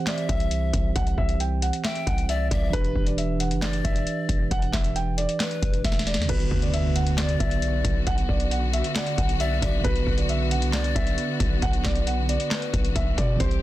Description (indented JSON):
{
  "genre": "hip hop, trap",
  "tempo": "135 BPM",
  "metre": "4/4",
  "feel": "half-time",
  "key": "B phrygian",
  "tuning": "A4 = 440 Hz",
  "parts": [
    { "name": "dark concert grand piano", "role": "melody", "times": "0.0-13.6 s", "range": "B4 to G5", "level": "-31 LUFS", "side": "right 1 dB", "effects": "none" },
    { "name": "mellow tine electric piano", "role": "accompaniment", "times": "0.0-13.6 s", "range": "D3 to C5", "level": "-30 LUFS", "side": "right 5 dB", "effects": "none" },
    { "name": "breathy hollow pan flute", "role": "second line", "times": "0.1-12.9 s", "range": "B4 to G5", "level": "-34 LUFS", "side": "left 7 dB", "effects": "ping-pong delay" },
    { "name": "booming analog drum machine", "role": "drums", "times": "0.1-13.6 s", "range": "crash cymbal, handclaps, hi-hat, kick drum, snare drum", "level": "-26 LUFS", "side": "equal", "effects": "vintage 12-bit sampler grit" },
    { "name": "hard-hitting 808-style bass", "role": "bass", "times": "0.3-13.6 s", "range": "E1 to B2", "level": "-26 LUFS", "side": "equal", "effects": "none" },
    { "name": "rich studio string section", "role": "sustained chords", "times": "6.3-13.6 s", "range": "D3 to G4", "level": "-32 LUFS", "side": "left 3 dB", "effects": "none" },
    { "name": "impact", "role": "sound effects", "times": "6.3-8.1 s", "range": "none", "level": "-36 LUFS", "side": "left 1 dB", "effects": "none" }
  ],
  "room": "digital ambience",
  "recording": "dense, heavily limited modern master",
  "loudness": "-22 LUFS",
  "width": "side -15 dB against mid",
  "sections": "0.0-6.3 A section; 6.3-13.6 B section",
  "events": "drum fill 5.8-6.3; impact 6.3-8.1",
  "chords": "0.0 C; 2.7 Em7; 6.3 Bm"
}